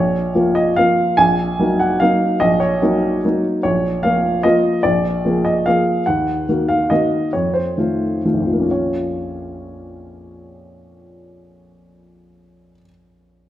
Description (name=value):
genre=classical, piano waltz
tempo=120-153 BPM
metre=3/4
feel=rubato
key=Bb minor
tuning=A4 = 441 Hz
part: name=warm upright piano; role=solo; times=0.0-13.5 s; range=Bb1 to Ab5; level=-15 LUFS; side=equal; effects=none
room=moderate recital hall reverb, RT60 1.6 s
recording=none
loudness=-15 LUFS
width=side -12 dB against mid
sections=0.0-8.7 A section; 8.7-11.4 B section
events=slowing down 5.4-8.7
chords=0.0 Bbm; 1.2 Ebm/Bb; 3.6 Bbm; 4.8 Bb7; 6.1 Ebm; 7.3 F7; 8.7 Bbm